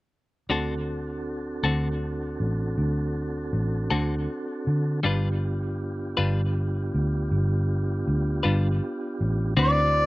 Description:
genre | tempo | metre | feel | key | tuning
blues | 53 BPM (dotted quarters) | 12/8 | straight | D mixolydian | A4 = 440 Hz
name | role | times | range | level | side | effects
clean electric guitar | accompaniment | 0.5-9.8 s | D3 to B4 | -27 LUFS | left 4 dB | tremolo
mellow tonewheel organ | sustained chords | 0.5-10.1 s | B3 to C5 | -31 LUFS | right 1 dB | slow rotary speaker
vintage muted fingered electric bass | bass | 0.5-10.1 s | G1 to D3 | -25 LUFS | equal | none
mellow harmonica | melody | 9.6-10.1 s | D5 | -21 LUFS | equal | overdrive
room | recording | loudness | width
little or no reverb | recorded outdoors, with no room sound | -24 LUFS | side -19 dB against mid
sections
0.5-9.6 A section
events
none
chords
0.5 D7; 5.0 G7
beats
| 0.51 1.65 2.78 3.92 | 5.05 6.18 7.32 8.45 | 9.57

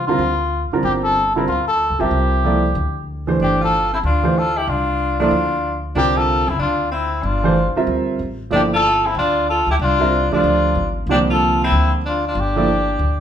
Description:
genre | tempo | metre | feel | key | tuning
jazz | 188 BPM | 4/4 | swing 63% on 8ths | G dorian | A4 = 440 Hz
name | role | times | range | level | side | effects
trumpet with cup mute | melody | 0.0-13.2 s | E4 to A4 | -19 LUFS | left 2 dB | none
upright bass | bass | 0.0-13.2 s | F#1 to D2 | -22 LUFS | left 1 dB | none
warm concert grand piano | accompaniment | 0.1-12.7 s | D3 to E5 | -20 LUFS | right 3 dB | none
clear tenor saxophone | second line | 3.4-13.2 s | C4 to F4 | -23 LUFS | equal | none
room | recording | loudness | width
wet large studio reverb, RT60 1.1 s | band playing live in one room | -16 LUFS | side -9 dB against mid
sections
0.0-13.2 A section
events
none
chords
0.0 G9sus4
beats
0.20 0.52 | 0.84 1.16 1.48 1.80 | 2.12 2.44 2.76 3.08 | 3.40 3.72 4.04 4.36 | 4.68 5.00 5.32 5.64 | 5.96 6.28 6.60 6.92 | 7.24 7.56 7.88 8.20 | 8.52 8.84 9.16 9.48 | 9.80 10.12 10.44 10.76 | 11.08 11.40 11.72 12.04 | 12.36 12.68 13.00

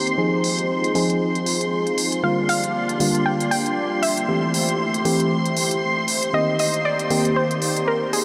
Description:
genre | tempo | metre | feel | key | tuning
deep house | 117 BPM | 4/4 | swing 57% on 16ths | G phrygian | A4 = 440 Hz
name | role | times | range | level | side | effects
hollow soft pad | sustained chords | 0.0-8.2 s | Ab3 to D5 | -29 LUFS | equal | ensemble chorus
mellow FM electric piano | stabs | 0.0-8.2 s | D3 to Ab4 | -25 LUFS | equal | chorus, low-pass filter, tape echo
soft string machine | texture | 0.0-8.2 s | C6 | -29 LUFS | equal | ensemble chorus
electronic hi-hat | drums | 0.1-8.2 s | none | -29 LUFS | equal | low-pass filter on hats, low-pass filter on room
soft round pluck | melody | 2.2-8.2 s | Ab4 to G5 | -27 LUFS | equal | chorus, cassette tape, diffuse ambient delay
room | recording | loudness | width
wet huge ambient reverb, RT60 8.0 s | dreamy mix soaked in reverb | -21 LUFS | mono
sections
0.0-8.2 A section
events
none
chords
0.2 Fm7; 2.2 Gm7; 4.3 Am7; 6.3 Cm7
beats
| 0.18 0.70 1.21 1.72 | 2.23 2.75 3.26 3.77 | 4.29 4.80 5.31 5.82 | 6.34 6.85 7.36 7.88

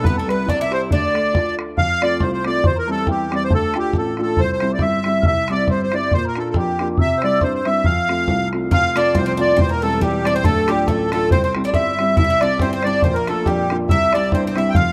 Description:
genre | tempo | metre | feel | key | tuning
celtic folk, Celtic polka | 138 BPM | 2/4 | swing 55% on 8ths | unclear | A4 = 440 Hz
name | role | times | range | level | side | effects
accordion | melody | 0.0-14.9 s | G4 to G5 | -22 LUFS | equal | light tremolo tuning
Irish bouzouki | second line | 0.0-1.5, 8.7-14.9 s | G3 to F4 | -29 LUFS | equal | none
mellow hollow wooden flute | second line | 0.0-14.9 s | G5 to F6 | -30 LUFS | equal | none
warm upright piano | accompaniment | 0.0-14.9 s | D1 to A4 | -24 LUFS | equal | none
bodhran | percussion | 0.0-14.9 s | none | -22 LUFS | equal | none
room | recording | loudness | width
moderate spring reverb, RT60 2.4 s | dark, warm production | -18 LUFS | mono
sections
0.0-1.8 A section; 1.8-8.7 B section; 8.7-14.9 B section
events
none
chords
0.0 C; 0.9 Dm; 1.8 F; 2.6 C/E; 3.5 Dm; 4.4 C; 6.1 Bb; 7.0 C; 7.9 F; 9.6 C/E; 10.4 Dm; 11.3 C; 13.0 Bb; 13.9 C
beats
| 0.04 0.47 | 0.90 1.34 | 1.77 2.21 | 2.64 3.08 | 3.51 3.94 | 4.38 4.81 | 5.25 5.68 | 6.12 6.55 | 6.98 7.42 | 7.85 8.28 | 8.72 9.15 | 9.58 10.01 | 10.44 10.88 | 11.31 11.74 | 12.17 12.60 | 13.03 13.46 | 13.89 14.32 | 14.75

